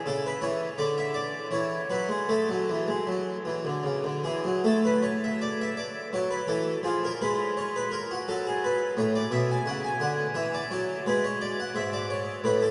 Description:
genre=classical, baroque-style suite movement for harpsichord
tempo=75-89 BPM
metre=3/4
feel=rubato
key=A major, F# minor from 4.6 s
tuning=A4 = 440 Hz
part: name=harpsichord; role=solo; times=0.1-12.7 s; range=G#2 to G#5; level=-28 LUFS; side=equal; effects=none
room=wet huge ambient reverb, RT60 7.0 s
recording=in a vast, echoing space, nothing above 10.6 kHz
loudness=-28 LUFS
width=mono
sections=0.0-4.6 A section; 4.6-12.7 A section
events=none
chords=0.0 C#m; 0.8 N.C.; 1.5 E; 2.3 A; 4.6 F#m/A; 6.8 Fdim; 8.3 N.C.; 9.0 A; 11.1 N.C.

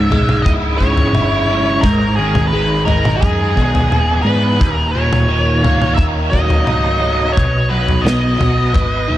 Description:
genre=psychedelic rock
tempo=87 BPM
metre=4/4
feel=straight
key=C# dorian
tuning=A4 = 440 Hz
part: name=octave-fuzz lead guitar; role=melody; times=0.0-9.2 s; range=G#4 to E5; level=-19 LUFS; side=equal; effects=distortion, tape echo
part: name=biting overdriven guitar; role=riff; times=0.0-9.2 s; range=C#2 to B4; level=-16 LUFS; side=equal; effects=rotary speaker
part: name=hollow-body short-scale picked electric bass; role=bass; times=0.0-9.2 s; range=C#1 to G#2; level=-18 LUFS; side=equal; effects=none
part: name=damped 70s drum kit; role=drums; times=0.1-8.9 s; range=kick drum, snare drum, toms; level=-18 LUFS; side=equal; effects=none
room=light reverb, studio ambience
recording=none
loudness=-12 LUFS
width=side -13 dB against mid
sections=0.0-9.2 A section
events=none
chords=0.0 C#m; 1.8 G#m; 4.6 D#m; 7.4 B

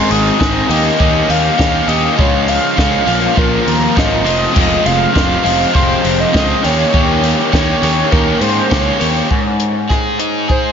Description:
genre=indie rock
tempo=101 BPM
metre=4/4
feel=straight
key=Ab major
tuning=A4 = 444 Hz
part: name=overdriven synth lead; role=melody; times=0.0-10.7 s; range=Bb4 to F5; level=-18 LUFS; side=equal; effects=distortion, chorus, tape echo
part: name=overdriven electric guitar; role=riff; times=0.0-10.7 s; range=F2 to Ab4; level=-14 LUFS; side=equal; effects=none
part: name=fuzz picked electric bass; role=bass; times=0.1-9.2 s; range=F1 to Ab2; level=-18 LUFS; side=equal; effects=overdrive
part: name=compact cocktail drum kit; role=drums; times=0.1-10.6 s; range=crash cymbal, hi-hat, kick drum, rim click, snare drum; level=-18 LUFS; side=equal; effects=none
room=moderate huge ambient reverb, RT60 4.9 s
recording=dreamy mix soaked in reverb, nothing above 7.5 kHz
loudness=-11 LUFS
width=side -7 dB against mid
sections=0.0-9.3 A section; 9.3-10.7 B section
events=none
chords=0.0 Ab; 0.7 Eb5; 2.2 Db; 3.1 Bbm7; 4.3 Fm; 6.6 Eb7(no3); 9.3 Ab5

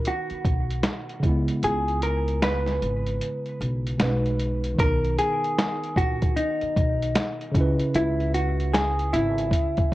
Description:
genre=lo-fi hip hop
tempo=76 BPM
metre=4/4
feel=swing 63% on 16ths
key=B major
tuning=A4 = 441 Hz
part: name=vintage hollow-body jazz guitar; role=melody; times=0.0-9.9 s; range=D#4 to B4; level=-26 LUFS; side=equal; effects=tape echo
part: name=mellow tine electric piano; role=accompaniment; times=0.0-9.9 s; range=B2 to B4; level=-29 LUFS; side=right 1 dB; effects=medium stereo tremolo
part: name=upright bass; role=bass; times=0.0-9.5 s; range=G#1 to C#2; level=-28 LUFS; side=equal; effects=none
part: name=lo-fi sampler-style drum kit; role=drums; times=0.1-9.9 s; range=hi-hat, kick drum, snare drum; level=-25 LUFS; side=equal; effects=none
room=light reverb, digital ambience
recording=worn, warbling old tape, cassette tape, warbly pitch drift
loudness=-22 LUFS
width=side -17 dB against mid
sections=0.0-4.8 A section; 4.8-9.9 B section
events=kick muted 1.6-4.8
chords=0.0 B; 1.2 C#m7; 4.0 B6; 4.8 Bmaj7; 7.5 C#m7

